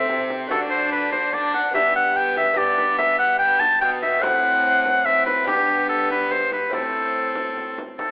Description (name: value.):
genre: classical, renaissance-style consort dance.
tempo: 144 BPM.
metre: 3/4.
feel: straight.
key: A dorian.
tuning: A4 = 441 Hz.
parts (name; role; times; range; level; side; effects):
clear oboe; melody; 0.0-8.1 s; G4 to A5; -18 LUFS; equal; none.
warm violin; second line; 0.0-8.1 s; B3 to D4; -28 LUFS; right 1 dB; none.
lute; accompaniment; 0.0-8.1 s; G2 to A4; -30 LUFS; equal; none.
rich cello; bass; 0.0-8.1 s; G2 to D3; -34 LUFS; equal; none.
frame drum; percussion; 0.1-8.1 s; none; -36 LUFS; equal; none.
room: moderate recital hall reverb, RT60 1.8 s.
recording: telephone sound.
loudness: -17 LUFS.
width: side -26 dB against mid.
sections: 0.0-8.0 A section.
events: none.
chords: 0.0 Am; 0.5 D; 1.8 G; 4.2 Am; 5.5 G; 6.7 Am.